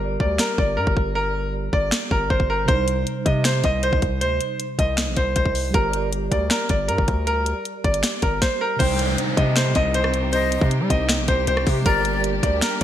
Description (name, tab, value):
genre	hip hop, trap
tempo	157 BPM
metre	4/4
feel	half-time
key	C minor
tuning	A4 = 439 Hz
part	mellow tine electric piano	accompaniment	0.0-12.8 s	C3 to D5	-29 LUFS	right 5 dB	ensemble chorus
part	distorted 808-style bass	bass	0.0-12.8 s	G1 to G3	-25 LUFS	equal	distortion
part	bright grand piano	melody	0.2-12.8 s	Bb4 to Eb5	-23 LUFS	equal	ping-pong delay
part	trap drum kit	drums	0.2-12.8 s	crash cymbal, finger snaps, hi-hat, kick drum, rim click, snare drum	-22 LUFS	equal	gated reverb
part	breathy jazz flute	second line	8.8-12.2 s	D5 to G5	-29 LUFS	left 6 dB	ping-pong delay
part	muted studio string section	sustained chords	8.8-12.8 s	C3 to G4	-29 LUFS	left 2 dB	none
part	downlifter	sound effects	8.8-11.9 s	none	-30 LUFS	left 1 dB	none
room	light reverb, digital ambience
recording	bright 1980s-style digital production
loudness	-18 LUFS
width	side -11 dB against mid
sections	0.0-8.8 A section; 8.8-12.8 B section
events	break 0.0-2.7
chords	0.0 Gm; 2.7 Cm; 5.7 Gm; 8.8 Cm; 11.9 Gm